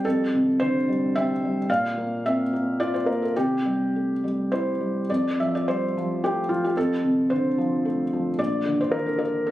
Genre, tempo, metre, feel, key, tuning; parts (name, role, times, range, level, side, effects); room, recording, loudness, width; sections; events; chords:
neoclassical minimalist piano; 109 BPM; 3/4; rubato; F major; A4 = 440 Hz
felt-muted upright piano; solo; 0.0-9.5 s; Bb1 to F5; -22 LUFS; equal
moderate recital hall reverb, RT60 1.6 s; recorded on a phone in the room, studio ambience, compression; -22 LUFS; side -14 dB against mid
0.0-9.5 A section
0.0 Fadd9; 1.7 Bb5; 3.3 C; 5.1 Fadd9; 8.4 Bb